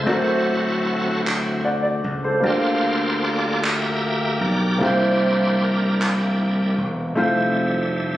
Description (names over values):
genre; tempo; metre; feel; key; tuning
slow gospel; 51 BPM (dotted quarters); 6/8; straight; unclear; A4 = 438 Hz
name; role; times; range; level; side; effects
warm grand piano; accompaniment; 0.0-8.2 s; C3 to F#5; -22 LUFS; equal; none
bright tonewheel organ; sustained chords; 0.0-8.2 s; F#3 to E5; -24 LUFS; right 1 dB; slow rotary speaker, chorus vibrato
gritty slap bass; bass; 0.0-8.2 s; E1 to D2; -23 LUFS; equal; overdrive
group handclap; percussion; 1.3-6.4 s; none; -27 LUFS; right 1 dB; none
room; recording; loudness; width
light reverb; recorded on a phone in the room, studio reverb, compression; -18 LUFS; side -14 dB against mid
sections
0.0-8.2 A section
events
tonewheel organ solo 0.0-8.2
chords
0.1 D7; 2.4 Gm7/D; 4.8 C7; 7.2 Fmaj7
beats
| 0.07 1.25 | 2.44 3.63 | 4.82 6.00 | 7.19